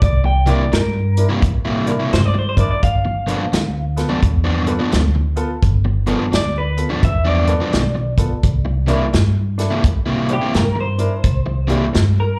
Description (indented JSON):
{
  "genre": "electric blues shuffle",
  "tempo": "86 BPM",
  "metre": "4/4",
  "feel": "swing 63% on 8ths",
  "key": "unclear",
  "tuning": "A4 = 441 Hz",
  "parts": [
    { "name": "electric guitar through a small old amp", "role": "melody", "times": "0.0-12.4 s", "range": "G4 to G5", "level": "-26 LUFS", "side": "equal", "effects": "slapback echo" },
    { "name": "upright bass", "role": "bass", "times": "0.0-12.4 s", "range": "G1 to A2", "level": "-20 LUFS", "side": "equal", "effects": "none" },
    { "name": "warm soul drum kit", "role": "drums", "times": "0.0-12.2 s", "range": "hi-hat, kick drum, snare drum", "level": "-20 LUFS", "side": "equal", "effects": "none" },
    { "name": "crunchy overdriven guitar", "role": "riff", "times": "0.2-12.0 s", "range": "G2 to E4", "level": "-23 LUFS", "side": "equal", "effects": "slapback echo" },
    { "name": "clear upright piano", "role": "accompaniment", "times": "0.5-11.8 s", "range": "B3 to C5", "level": "-28 LUFS", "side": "equal", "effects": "slapback echo" }
  ],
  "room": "light reverb",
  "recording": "live gig heard through the venue's PA, club reverb",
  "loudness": "-17 LUFS",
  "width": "mono",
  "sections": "0.0-12.4 A section",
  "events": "clean electric guitar solo 0.0-12.4",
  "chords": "0.0 C7; 2.8 G7; 8.4 C7"
}